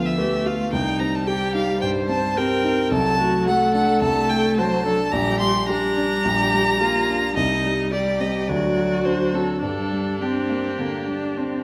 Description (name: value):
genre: quick classical-period movement for piano quartet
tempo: 108 BPM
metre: 4/4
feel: straight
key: G minor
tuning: A4 = 439 Hz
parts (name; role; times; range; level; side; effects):
- rich violin; melody; 0.0-11.6 s; G4 to C6; -26 LUFS; equal; none
- rich cello; second line; 0.0-11.6 s; F3 to D4; -28 LUFS; equal; none
- clear viola; accompaniment; 0.0-11.6 s; D4 to C5; -28 LUFS; equal; none
- warm grand piano; accompaniment; 0.0-11.6 s; Bb1 to B4; -27 LUFS; equal; none
room: wet scoring stage reverb, RT60 1.6 s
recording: none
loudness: -21 LUFS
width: mono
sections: 0.0-11.6 A section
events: none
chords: 0.0 Bdim/D; 0.7 Cm; 2.9 D7/C; 5.1 Gm/Bb; 7.4 Cm; 8.5 D7; 9.6 Gm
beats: 0.18 | 0.72 1.27 1.81 2.36 | 2.91 3.46 4.02 4.57 | 5.13 5.69 6.25 6.81 | 7.37 7.92 8.48 9.06 | 9.63 10.22 10.80 11.38